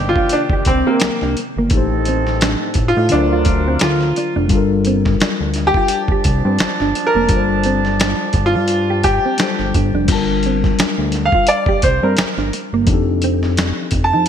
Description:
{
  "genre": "R&B, neo-soul",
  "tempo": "86 BPM",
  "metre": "4/4",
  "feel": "swing 56% on 16ths",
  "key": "G minor",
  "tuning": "A4 = 440 Hz",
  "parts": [
    { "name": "mellow reed electric piano", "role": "accompaniment", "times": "0.0-14.3 s", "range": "A2 to A5", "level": "-22 LUFS", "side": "left 7 dB", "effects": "none" },
    { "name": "warm horn section", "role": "stabs", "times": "0.0-9.7 s", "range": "Eb3 to A5", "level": "-24 LUFS", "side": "right 3 dB", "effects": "ping-pong delay" },
    { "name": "fat analog bass", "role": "bass", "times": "0.0-14.3 s", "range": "E#1 to C3", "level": "-19 LUFS", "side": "equal", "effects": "none" },
    { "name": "clear baby grand piano", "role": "melody", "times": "0.1-14.3 s", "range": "Bb3 to A5", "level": "-17 LUFS", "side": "equal", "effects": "ping-pong delay" },
    { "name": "mellow electric guitar", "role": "second line", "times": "0.2-14.3 s", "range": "Bb3 to G4", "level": "-24 LUFS", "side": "right 4 dB", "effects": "analog chorus" },
    { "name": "dusty soul sampler-style drum kit", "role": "drums", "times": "0.2-14.3 s", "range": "crash cymbal, hi-hat, kick drum, snare drum", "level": "-18 LUFS", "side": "equal", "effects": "gated reverb" }
  ],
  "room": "moderate lush hall reverb, RT60 1.7 s, digital ambience",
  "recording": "bright 1980s-style digital production",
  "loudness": "-14 LUFS",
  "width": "side -8 dB against mid",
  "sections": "0.0-10.1 A section; 10.1-14.3 A section",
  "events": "none",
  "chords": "0.0 Cm9; 1.7 Am7b5; 3.1 D7alt; 4.5 Gm9; 12.9 F13"
}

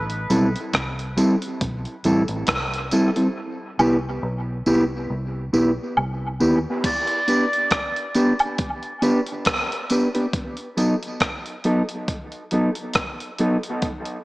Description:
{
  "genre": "dub reggae",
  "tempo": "69 BPM",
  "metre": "4/4",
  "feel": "swing 56% on 16ths",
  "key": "unclear",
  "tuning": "A4 = 438 Hz",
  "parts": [
    { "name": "vintage muted fingered electric bass", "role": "bass", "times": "0.0-6.6 s", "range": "A1 to D#2", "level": "-28 LUFS", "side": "equal", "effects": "none" },
    { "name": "breakbeat sampler-style drum kit", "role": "drums", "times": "0.1-14.2 s", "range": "crash cymbal, hi-hat, kick drum, rim click", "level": "-25 LUFS", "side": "equal", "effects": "dub echo" },
    { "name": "mellow electric guitar", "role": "accompaniment", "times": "0.3-13.6 s", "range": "F#3 to B4", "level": "-22 LUFS", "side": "equal", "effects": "dub echo" },
    { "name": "tambourine and woodblock", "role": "percussion", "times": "0.3-11.0 s", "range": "none", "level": "-27 LUFS", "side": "right 1 dB", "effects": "dub echo" },
    { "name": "melodica", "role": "melody", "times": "6.9-7.7 s", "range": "D5", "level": "-25 LUFS", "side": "right 1 dB", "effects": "dub echo" }
  ],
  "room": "moderate echo chamber reverb, RT60 1.9 s",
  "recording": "echo-heavy mix, small speaker sound",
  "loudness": "-20 LUFS",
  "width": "side -20 dB against mid",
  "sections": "0.0-6.8 A section; 6.8-14.2 B section",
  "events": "break 0.0-6.8, 10.3-14.2; part muted 3.4-6.8",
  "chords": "0.0 Am7; 3.4 Cmaj7; 6.8 Bm; 10.3 B7"
}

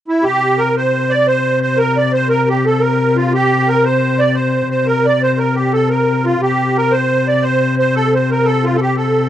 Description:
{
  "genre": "celtic folk",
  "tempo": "117 BPM (dotted quarters)",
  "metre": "9/8",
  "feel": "straight",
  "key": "unclear",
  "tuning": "A4 = 439 Hz",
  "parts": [
    { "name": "musette accordion", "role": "melody", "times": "0.1-9.3 s", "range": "E4 to D5", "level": "-14 LUFS", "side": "right 2 dB", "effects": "none" },
    { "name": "clear cello", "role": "drone", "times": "0.2-9.3 s", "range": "C3", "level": "-17 LUFS", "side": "left 3 dB", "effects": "none" }
  ],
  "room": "light reverb, small room ambience",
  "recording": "dry, close 1970s-style studio recording",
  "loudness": "-12 LUFS",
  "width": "side -11 dB against mid",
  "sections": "0.2-9.3 A section",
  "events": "none",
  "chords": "none"
}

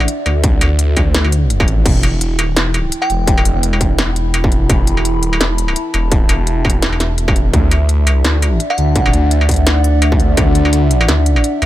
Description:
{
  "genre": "half-time drum and bass",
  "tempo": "169 BPM",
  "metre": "4/4",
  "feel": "swing 56% on 16ths, half-time",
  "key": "E minor",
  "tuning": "A4 = 439 Hz",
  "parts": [
    { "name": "dark analog pad", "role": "sustained chords", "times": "0.0-11.7 s", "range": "D4 to B5", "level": "-22 LUFS", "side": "equal", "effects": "chorus, sidechain pumping" },
    { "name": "phased detuned saw bass", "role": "bass", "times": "0.0-11.7 s", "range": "E1 to D2", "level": "-14 LUFS", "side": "equal", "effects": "phaser" },
    { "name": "industrial drum kit", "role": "drums", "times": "0.0-11.7 s", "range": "crash cymbal, hi-hat, snare drum, struck metal", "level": "-19 LUFS", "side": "equal", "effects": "none" },
    { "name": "electronic kick drum", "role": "drums", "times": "0.4-10.5 s", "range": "none", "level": "-14 LUFS", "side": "equal", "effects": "distortion" },
    { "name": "glassy synth bell", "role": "melody", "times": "3.0-3.4, 8.7-9.1 s", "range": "F#5 to G5", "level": "-25 LUFS", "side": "equal", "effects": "chorus, dub echo" }
  ],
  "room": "little or no reverb",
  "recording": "none",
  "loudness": "-11 LUFS",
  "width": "side -14 dB against mid",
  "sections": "0.0-11.7 A section",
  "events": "none",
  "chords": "0.0 Dadd9; 1.9 Em; 7.5 Dadd9"
}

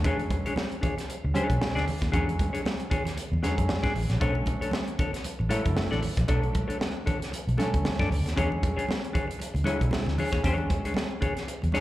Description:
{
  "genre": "funk",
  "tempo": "116 BPM",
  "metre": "4/4",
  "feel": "swing 56% on 16ths",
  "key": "unclear",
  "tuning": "A4 = 439 Hz",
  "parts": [
    { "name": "warm upright piano", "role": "stabs", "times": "0.0-11.8 s", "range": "D3 to E4", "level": "-33 LUFS", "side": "right 1 dB", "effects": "slapback echo" },
    { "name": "vintage muted fingered electric bass", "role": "bass", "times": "0.0-11.7 s", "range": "F#1 to G#2", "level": "-28 LUFS", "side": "equal", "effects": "none" },
    { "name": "crisp fusion drum kit", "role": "drums", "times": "0.0-11.8 s", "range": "hi-hat, kick drum, snare drum", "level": "-30 LUFS", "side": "equal", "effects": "none" },
    { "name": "congas", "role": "percussion", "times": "0.0-11.8 s", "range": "none", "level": "-35 LUFS", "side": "right 2 dB", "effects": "none" },
    { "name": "semi-hollow electric guitar", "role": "accompaniment", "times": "0.1-11.8 s", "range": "D4 to D5", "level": "-32 LUFS", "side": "left 3 dB", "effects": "spring reverb, slapback echo" }
  ],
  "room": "studio reverb",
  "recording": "live gig heard through the venue's PA, club reverb",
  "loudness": "-25 LUFS",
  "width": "side -15 dB against mid",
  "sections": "0.0-11.8 A section",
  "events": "none",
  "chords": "0.0 E13 (rootless); 4.2 Bm9 (rootless); 8.4 E13"
}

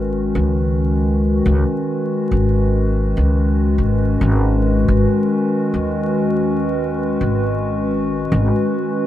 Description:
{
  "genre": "ambient dub",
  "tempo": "70 BPM",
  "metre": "4/4",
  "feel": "swing 58% on 16ths",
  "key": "unclear",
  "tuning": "A4 = 440 Hz",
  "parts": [
    { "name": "warbly tape-like pad", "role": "sustained chords", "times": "0.0-9.1 s", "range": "D#3 to B4", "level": "-18 LUFS", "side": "left 1 dB", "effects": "chorus, built-in reverb" },
    { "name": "upright bass", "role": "bass", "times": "0.0-8.5 s", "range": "G#1 to D#2", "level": "-18 LUFS", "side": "equal", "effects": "tube saturation" }
  ],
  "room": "moderate spring reverb, RT60 1.3 s, small room ambience",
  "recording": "vinyl crackle",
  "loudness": "-15 LUFS",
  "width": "side -12 dB against mid",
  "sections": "0.0-9.1 A section",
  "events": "none",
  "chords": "0.0 G#m7"
}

